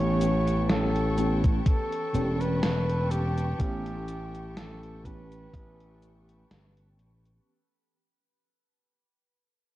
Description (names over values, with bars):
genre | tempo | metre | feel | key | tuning
vaporwave | 62 BPM | 4/4 | swing 55% on 16ths | unclear | A4 = 439 Hz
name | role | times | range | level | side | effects
warm flugelhorn | melody | 0.0-6.5 s | G4 to C#5 | -33 LUFS | equal | tape echo
FM electric piano with soft pad layer | accompaniment | 0.0-7.5 s | E3 to G4 | -32 LUFS | equal | tremolo, ensemble chorus, analog delay
rich studio string section | sustained chords | 0.0-7.4 s | B4 to C#6 | -41 LUFS | left 1 dB | none
slap bass | bass | 0.0-7.4 s | E1 to A1 | -28 LUFS | equal | none
gated 80s digital drum machine | drums | 0.2-7.4 s | cabasa, hi-hat, snare drum | -32 LUFS | equal | gated reverb, gated reverb snare
electronic kick drum | drums | 1.4-5.7 s | none | -25 LUFS | equal | none
room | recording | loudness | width
light reverb | echo-heavy mix, cassette tape | -24 LUFS | side -15 dB against mid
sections
0.0-7.5 A section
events
fade-out 0.0-7.5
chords
0.0 A9